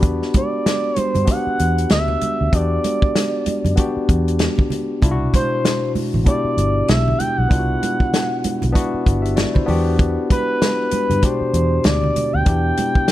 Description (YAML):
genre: lush 1970s-style soul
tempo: 96 BPM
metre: 4/4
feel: swing 58% on 16ths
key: unclear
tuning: A4 = 440 Hz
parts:
  - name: barky tine electric piano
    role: accompaniment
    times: 0.0-13.1 s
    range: B2 to B5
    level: -22 LUFS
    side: left 2 dB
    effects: overdrive
  - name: vintage muted fingered electric bass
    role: bass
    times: 0.0-12.7 s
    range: G1 to G2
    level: -20 LUFS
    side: equal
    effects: none
  - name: warm soul drum kit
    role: drums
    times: 0.0-13.1 s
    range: hi-hat, kick drum, snare drum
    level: -18 LUFS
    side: equal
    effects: none
  - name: congas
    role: percussion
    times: 0.3-13.1 s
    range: none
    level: -27 LUFS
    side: right 4 dB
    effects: none
  - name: expressive portamento lead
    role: melody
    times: 0.4-13.1 s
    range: B4 to G5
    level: -22 LUFS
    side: right 1 dB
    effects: chorus
room: small room ambience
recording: dark, warm production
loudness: -16 LUFS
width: side -14 dB against mid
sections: 0.0-13.1 A section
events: none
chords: 0.0 Em7; 5.0 Cmaj9#11; 9.7 Em7